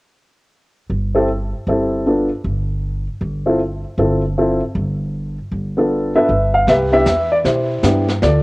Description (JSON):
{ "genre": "jazz piano trio", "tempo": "156 BPM", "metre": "4/4", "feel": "swing 64% on 8ths", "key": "C major", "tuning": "A4 = 440 Hz", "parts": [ { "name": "upright bass", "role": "bass", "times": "0.9-8.4 s", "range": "G1 to B2", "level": "-20 LUFS", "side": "equal", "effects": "none" }, { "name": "warm upright piano", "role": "melody", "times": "1.1-8.4 s", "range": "B3 to F5", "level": "-15 LUFS", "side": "equal", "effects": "cassette tape" }, { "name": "jazz brush drum kit", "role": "drums", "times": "6.7-8.4 s", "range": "brushed snare drum, hi-hat, snare drum", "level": "-22 LUFS", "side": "equal", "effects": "cassette tape" } ], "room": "light reverb, small room ambience", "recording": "home recording on cassette", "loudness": "-15 LUFS", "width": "side -22 dB against mid", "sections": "0.5-6.7 A section; 6.7-8.4 B section", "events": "none", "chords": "0.5 Am7/G; 6.7 Cmaj7" }